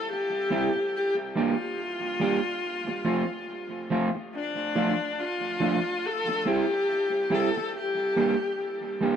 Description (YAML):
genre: reggae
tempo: 71 BPM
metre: 4/4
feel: swing 59% on 16ths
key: unclear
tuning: A4 = 445 Hz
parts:
  - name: clear viola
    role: melody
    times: 0.0-9.0 s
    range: D4 to A4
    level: -28 LUFS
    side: left 2 dB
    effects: tape echo
  - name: electric guitar at the edge of break-up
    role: accompaniment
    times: 0.5-9.2 s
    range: F3 to G4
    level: -28 LUFS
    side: right 2 dB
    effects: tape echo
room: moderate plate reverb, RT60 2.5 s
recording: echo-heavy mix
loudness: -25 LUFS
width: side -8 dB against mid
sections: 0.0-9.2 A section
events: none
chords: 0.0 C; 0.9 Gm; 2.6 F; 4.3 Dm; 6.0 C; 7.7 Gm